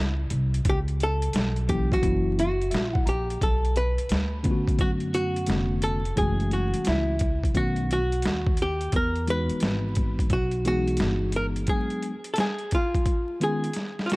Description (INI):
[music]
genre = hip hop, jazz-hop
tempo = 87 BPM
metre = 4/4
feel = swing 66% on 16ths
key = unclear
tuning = A4 = 439 Hz
[part]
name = archtop guitar, miked and amplified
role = melody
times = 0.0-14.2 s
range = E4 to B4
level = -28 LUFS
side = equal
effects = none
[part]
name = upright bass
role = bass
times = 0.0-11.7 s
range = E#1 to F#2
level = -27 LUFS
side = equal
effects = none
[part]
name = boom bap sampler-style drum kit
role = drums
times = 0.3-14.2 s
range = hi-hat, kick drum, snare drum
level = -27 LUFS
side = equal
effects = overdrive
[part]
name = mellow tine electric piano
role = accompaniment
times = 1.7-13.7 s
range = D3 to A#5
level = -29 LUFS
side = left 1 dB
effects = medium stereo tremolo
[sound]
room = light reverb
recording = dark, warm production, vinyl crackle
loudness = -23 LUFS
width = side -23 dB against mid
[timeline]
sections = 0.0-3.4 A section; 3.4-14.2 B section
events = hollow-body jazz guitar solo 0.0-3.4; tine electric piano fill 2.4-3.4; drum fill 13.8-14.2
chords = 0.0 N.C.; 0.7 A13; 2.0 F#7; 3.4 Bm7; 6.2 F#m7; 7.6 B9; 8.9 Emaj9; 11.7 G#m7b5; 13.1 C#7